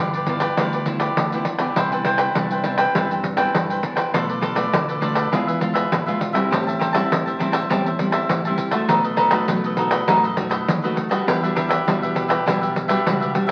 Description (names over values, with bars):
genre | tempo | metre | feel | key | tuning
samba and choro | 101 BPM | 4/4 | straight | unclear | A4 = 443 Hz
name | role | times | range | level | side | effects
cavaquinho | accompaniment | 0.0-13.5 s | D4 to A5 | -24 LUFS | equal | none
nylon-string guitar | accompaniment | 0.0-13.5 s | G2 to F#4 | -28 LUFS | equal | none
fingered electric bass with an envelope filter | bass | 0.0-13.3 s | G1 to G2 | -32 LUFS | equal | none
pandeiro | percussion | 0.1-13.5 s | none | -25 LUFS | equal | none
room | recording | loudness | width
wet club reverb, RT60 0.9 s | very old 78 rpm record, vinyl crackle | -21 LUFS | mono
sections
0.0-13.5 A section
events
none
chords
0.0 G6; 1.8 Cmaj9; 4.1 Bm7b5; 5.3 E7b9; 6.5 Am7; 8.9 B7; 11.3 Em9